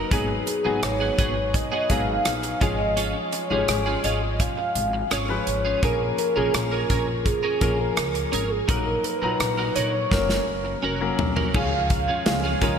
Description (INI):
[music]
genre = 1980s-style pop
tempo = 84 BPM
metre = 4/4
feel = straight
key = unclear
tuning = A4 = 441 Hz
[part]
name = clear grand piano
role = accompaniment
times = 0.0-12.8 s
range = A#2 to A#5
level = -28 LUFS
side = left 4 dB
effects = shimmer reverb
[part]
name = twelve-string electric guitar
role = riff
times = 0.0-12.8 s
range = B3 to A#4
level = -30 LUFS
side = right 3 dB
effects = ensemble chorus, shimmer reverb, digital delay
[part]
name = warm velvety synth lead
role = melody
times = 0.1-12.8 s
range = G#4 to E#5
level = -26 LUFS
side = right 1 dB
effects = chorus, shimmer reverb
[part]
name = upright bass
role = bass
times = 0.1-12.8 s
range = E#1 to C#2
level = -29 LUFS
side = equal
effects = none
[part]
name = modern studio drum kit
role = drums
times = 0.1-12.8 s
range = crash cymbal, hi-hat, kick drum, rim click, snare drum, toms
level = -26 LUFS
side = equal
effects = gated reverb
[sound]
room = moderate lush hall reverb, RT60 3.1 s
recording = bright 1980s-style digital production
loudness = -21 LUFS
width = side -7 dB against mid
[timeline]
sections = 0.0-11.5 A section; 11.5-12.8 B section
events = drum fill 10.1-11.5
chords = 0.1 G#m7; 2.6 C#/G#; 5.8 A#m7; 8.7 D#m/A#; 10.1 F#; 11.5 C#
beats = | 0.12 0.83 1.54 2.26 | 2.97 3.69 4.40 5.12 | 5.83 6.54 7.26 7.97 | 8.69 9.40 10.12 10.83 | 11.54 12.26